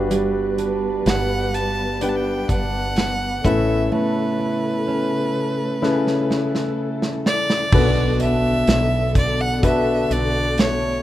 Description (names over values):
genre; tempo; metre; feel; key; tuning
pop ballad; 63 BPM; 4/4; straight; B minor; A4 = 440 Hz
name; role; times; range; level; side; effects
warm concert grand piano; accompaniment; 0.0-11.0 s; G2 to B4; -24 LUFS; left 3 dB; none
dark studio string section; sustained chords; 0.0-11.0 s; C#3 to B4; -28 LUFS; left 2 dB; none
fingerpicked steel-string acoustic guitar; arpeggios; 0.0-11.0 s; B2 to A4; -25 LUFS; right 4 dB; none
woody fretless electric bass; bass; 0.0-11.0 s; G1 to B1; -25 LUFS; equal; none
modern studio drum kit; drums; 0.1-10.8 s; crash cymbal, hi-hat, kick drum, snare drum; -21 LUFS; right 1 dB; none
clear violin; melody; 1.1-11.0 s; B4 to A5; -24 LUFS; equal; none
impact; sound effects; 7.8-11.0 s; none; -32 LUFS; equal; none
room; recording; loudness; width
little or no reverb; rough home demo mix; -18 LUFS; side -13 dB against mid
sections
0.0-7.7 A section; 7.7-11.0 B section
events
drum fill 5.8-7.7; impact 7.7-11.0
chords
0.0 Gmaj7; 3.4 Aadd9; 7.7 Bm7